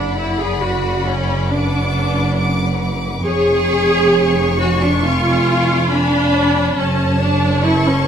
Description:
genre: classical, slow romantic movement for string orchestra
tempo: 69 BPM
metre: 4/4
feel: rubato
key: unclear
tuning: A4 = 435 Hz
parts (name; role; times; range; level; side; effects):
- clear studio violin section; melody; 0.0-8.1 s; A5 to D6; -24 LUFS; left 4 dB; none
- rich studio violin section; second line; 0.0-8.1 s; B4 to A5; -25 LUFS; left 4 dB; none
- clear studio viola section; accompaniment; 0.0-8.1 s; C#4 to G#4; -17 LUFS; right 1 dB; none
- clear studio double bass section; bass; 0.0-8.1 s; E#1 to F#1; -21 LUFS; right 2 dB; none
- rich studio cello section; bass; 0.0-8.1 s; E#2 to F#2; -22 LUFS; right 1 dB; none
room: light reverb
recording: close, detailed microphones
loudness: -14 LUFS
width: side -8 dB against mid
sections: 0.0-8.1 A section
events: none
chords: 0.0 E7sus2/F# (rootless); 3.2 C#7/E#; 6.8 F#m

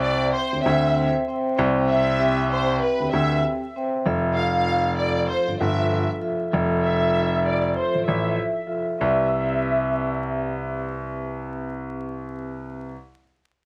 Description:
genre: hip hop, boom-bap hip-hop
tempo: 97 BPM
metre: 4/4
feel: swing 57% on 16ths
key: C major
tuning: A4 = 441 Hz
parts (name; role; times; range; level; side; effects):
- warm symphonic violin section; melody; 0.0-10.8 s; B4 to F5; -27 LUFS; equal; low-pass filter, cassette tape, analog delay
- vibraphone with medium mallets; accompaniment; 0.0-12.9 s; F3 to G5; -28 LUFS; equal; cassette tape, low-pass filter
- clear grand piano; bass; 0.0-12.9 s; F1 to D2; -27 LUFS; equal; none
room: light reverb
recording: home recording on cassette, vinyl crackle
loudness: -23 LUFS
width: mono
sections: 0.0-4.1 A section; 4.1-9.0 B section; 9.0-11.5 C section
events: filter sweep 4.1-9.0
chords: 0.0 C; 4.1 Fmaj7; 9.0 Cmaj7

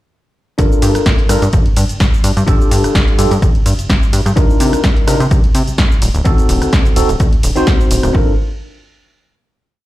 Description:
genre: filtered disco house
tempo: 127 BPM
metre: 4/4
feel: swing 54% on 16ths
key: G minor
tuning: A4 = 440 Hz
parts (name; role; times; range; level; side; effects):
- tine electric piano; accompaniment; 0.6-8.3 s; C4 to C5; -17 LUFS; left 1 dB; phaser, sidechain pumping
- plucky analog bass; bass; 0.6-8.4 s; D1 to C3; -16 LUFS; equal; tube saturation, sidechain pumping
- electronic kick drum; drums; 0.6-8.3 s; none; -13 LUFS; equal; none
- punchy analog drum machine; drums; 0.6-8.1 s; cabasa, hi-hat, ride cymbal, rim click, snare drum; -20 LUFS; equal; none
room: little or no reverb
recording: played on a big sound system in a bare room, large studio reverb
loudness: -10 LUFS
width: side -16 dB against mid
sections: 0.6-8.1 drop; 8.1-9.9 final chord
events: drop 0.6-8.1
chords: 0.6 Gm7; 2.2 Dmadd11/G; 4.4 Cm11; 6.0 D7b9; 8.1 Gm7

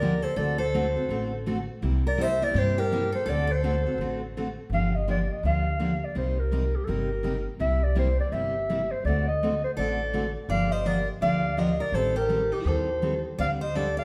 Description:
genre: acoustic string swing (jazz manouche)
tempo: 166 BPM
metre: 4/4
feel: swing 60% on 8ths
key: G minor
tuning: A4 = 436 Hz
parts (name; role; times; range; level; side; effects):
- dark clarinet; melody; 0.0-14.0 s; G4 to F5; -30 LUFS; equal; none
- picked steel-string acoustic guitar; second line; 0.0-4.2, 9.8-14.0 s; Eb4 to D5; -37 LUFS; equal; none
- picked steel-string acoustic guitar; accompaniment; 0.0-13.9 s; C3 to A4; -32 LUFS; equal; none
- upright bass; bass; 0.0-14.0 s; G1 to G2; -31 LUFS; equal; none
room: moderate scoring stage reverb, RT60 1.6 s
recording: recorded in a church or concert hall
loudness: -26 LUFS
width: mono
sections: 0.0-4.7 A section; 4.7-14.0 B section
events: none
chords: 0.4 D7; 1.8 C7; 3.3 D7; 4.7 Gm7; 6.2 Cm7; 7.6 C7; 9.1 D7b9; 10.5 Gm7; 11.9 Am7b5; 13.4 D7sus4

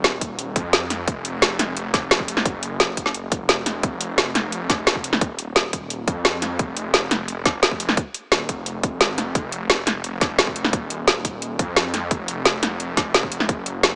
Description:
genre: dark technical drum and bass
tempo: 174 BPM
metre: 4/4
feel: straight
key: unclear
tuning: A4 = 440 Hz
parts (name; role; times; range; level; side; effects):
- wide detuned saw bass; bass; 0.0-14.0 s; Eb1 to F2; -28 LUFS; equal; chorus, overdrive
- drum and bass drum kit; drums; 0.0-13.9 s; hi-hat, snare drum; -18 LUFS; equal; none
- electronic kick drum; drums; 0.2-13.6 s; none; -23 LUFS; equal; none
room: light reverb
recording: small speaker sound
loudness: -19 LUFS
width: side -28 dB against mid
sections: 0.0-14.0 A section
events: none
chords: none

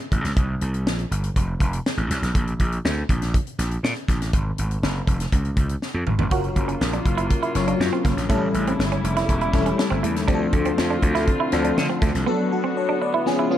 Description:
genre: polished 1980s jazz-funk pop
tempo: 121 BPM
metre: 4/4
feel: straight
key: unclear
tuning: A4 = 440 Hz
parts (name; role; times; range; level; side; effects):
- gritty slap bass; bass; 0.1-12.2 s; E1 to D3; -24 LUFS; equal; overdrive
- tight funk drum kit; drums; 0.1-13.4 s; hi-hat, kick drum, snare drum, toms; -24 LUFS; equal; none
- FM electric piano; accompaniment; 6.3-13.6 s; F3 to D5; -24 LUFS; left 3 dB; phaser, analog chorus
- warm studio string section; sustained chords; 6.3-13.6 s; C#3 to F#4; -28 LUFS; left 1 dB; none
- semi-hollow electric guitar; riff; 6.3-13.5 s; A3 to F#4; -28 LUFS; right 6 dB; analog chorus
room: light reverb, small room ambience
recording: dark, warm production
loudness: -20 LUFS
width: side -11 dB against mid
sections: 0.0-13.6 A section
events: drum fill 5.8-6.3, 13.3-13.6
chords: 0.4 C5; 1.4 N.C.; 4.3 Fm; 5.3 N.C.; 6.3 F#maj7; 8.3 A7; 10.3 Dm7; 12.3 Bm7

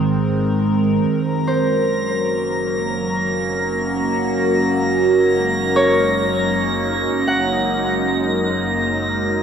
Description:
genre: ambient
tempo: free time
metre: none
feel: none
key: unclear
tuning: A4 = 440 Hz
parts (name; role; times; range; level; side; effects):
- evolving wavetable pad; sustained chords; 0.0-9.4 s; Eb3 to C5; -18 LUFS; right 1 dB; chorus, built-in reverb, phaser, shimmer reverb
- rich studio double bass section; bass; 0.0-9.4 s; Gb1 to Ab1; -30 LUFS; equal; none
- organ-like drone; drone; 3.8-9.4 s; Ab3 to Eb4; -29 LUFS; right 1 dB; ensemble chorus, built-in reverb
- drifting glass-harmonics texture; texture; 1.4-9.4 s; Bb6; -24 LUFS; right 2 dB; chorus, built-in reverb, shimmer reverb
- Celtic harp; arpeggios; 1.5-9.4 s; C5 to Gb5; -23 LUFS; right 1 dB; diffuse ambient delay, shimmer reverb
room: wet concert hall reverb, RT60 2.2 s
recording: dark, warm production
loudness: -16 LUFS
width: side -7 dB against mid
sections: 0.0-1.1 A section; 1.1-9.4 A section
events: fade-in on double bass section 1.1-9.4; fade-in on synth drone 1.1-9.4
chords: 0.0 Ab; 1.1 Gb

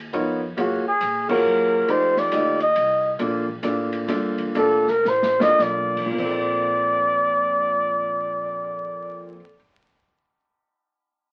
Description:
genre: jazz, small-group swing and bop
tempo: 96-138 BPM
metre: 3/4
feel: swing 65% on 8ths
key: Bb major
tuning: A4 = 436 Hz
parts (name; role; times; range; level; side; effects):
- upright bass; bass; 0.0-9.4 s; F1 to Bb2; -40 LUFS; equal; none
- warm concert grand piano; accompaniment; 0.1-9.6 s; Bb2 to Eb5; -28 LUFS; equal; none
- open jazz drum kit; drums; 0.1-6.4 s; crash cymbal, hi-hat, kick drum, ride cymbal, snare drum; -36 LUFS; equal; none
- dark trumpet; melody; 0.6-9.4 s; Gb4 to Eb5; -22 LUFS; equal; none
room: moderate studio reverb, RT60 0.5 s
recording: very old 78 rpm record, vinyl crackle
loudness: -22 LUFS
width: mono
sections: 0.0-6.2 A section; 6.2-9.9 B section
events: band accent 1.2; slowing down 3.2-6.2; drum fill 5.0-5.6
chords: 0.0 Db13; 0.6 Gbmaj9; 1.9 F13; 3.2 Bbmaj7

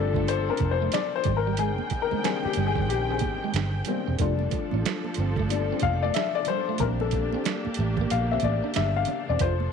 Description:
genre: R&B, neo-soul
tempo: 92 BPM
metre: 4/4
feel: swing 63% on 16ths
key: unclear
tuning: A4 = 440 Hz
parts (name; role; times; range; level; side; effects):
- electric guitar at the edge of break-up; second line; 0.0-9.5 s; G3 to F4; -35 LUFS; right 14 dB; none
- warm upright piano; accompaniment; 0.0-9.7 s; G3 to F5; -27 LUFS; left 12 dB; none
- warm symphonic string section; sustained chords; 0.0-9.7 s; Eb3 to G5; -34 LUFS; right 1 dB; none
- vintage muted fingered electric bass; bass; 0.0-9.7 s; E1 to Bb1; -27 LUFS; right 1 dB; none
- boom bap sampler-style drum kit; drums; 0.1-9.6 s; finger snaps, hi-hat, kick drum, snare drum; -31 LUFS; right 6 dB; none
- congas; percussion; 0.2-9.7 s; none; -40 LUFS; right 14 dB; none
room: light reverb, small room ambience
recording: 1960s-style stereo with parts hard left and right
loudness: -23 LUFS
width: side -6 dB against mid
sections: 0.0-9.7 A section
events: upright piano solo 0.0-9.7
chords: 0.0 F6; 1.3 Abmaj7; 4.2 F6; 6.8 Bb69

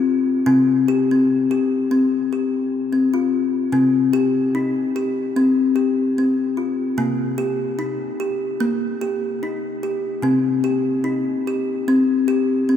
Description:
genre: world meditative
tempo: 74 BPM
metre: 4/4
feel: swing 55% on 16ths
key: C minor pentatonic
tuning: A4 = 444 Hz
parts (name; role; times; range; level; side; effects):
- kalimba; solo; 0.0-12.8 s; C3 to G4; -17 LUFS; left 2 dB; none
room: wet cathedral reverb, RT60 6.2 s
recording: in a vast, echoing space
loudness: -17 LUFS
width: side -9 dB against mid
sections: 0.0-3.7 A section; 3.7-12.8 B section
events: none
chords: 0.0 C5; 3.7 Cm; 7.0 Eb/C; 10.2 Cm

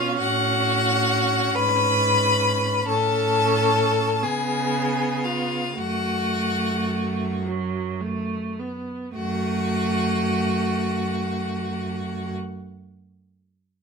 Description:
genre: classical, slow romantic movement for string quartet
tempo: 34-47 BPM (dotted quarters)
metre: 6/8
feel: rubato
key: F# minor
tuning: A4 = 443 Hz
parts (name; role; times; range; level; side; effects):
- clear violin; melody; 0.0-12.3 s; E#5 to B5; -26 LUFS; left 3 dB; none
- rich violin; second line; 0.0-12.3 s; E#4 to B4; -26 LUFS; left 5 dB; none
- rich viola; accompaniment; 0.0-12.3 s; F#3 to C#4; -27 LUFS; right 3 dB; none
- clear cello; bass; 0.0-12.3 s; F#2 to C#3; -28 LUFS; right 4 dB; none
room: light reverb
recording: minimal, uncompressed stereo recording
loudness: -21 LUFS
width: side -5 dB against mid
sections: 0.0-9.2 A section; 9.2-12.5 B section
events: slowing down 1.6-9.2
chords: 0.2 F#m/A; 1.6 C#5/G#; 2.9 A; 4.2 C#5; 5.8 F#m

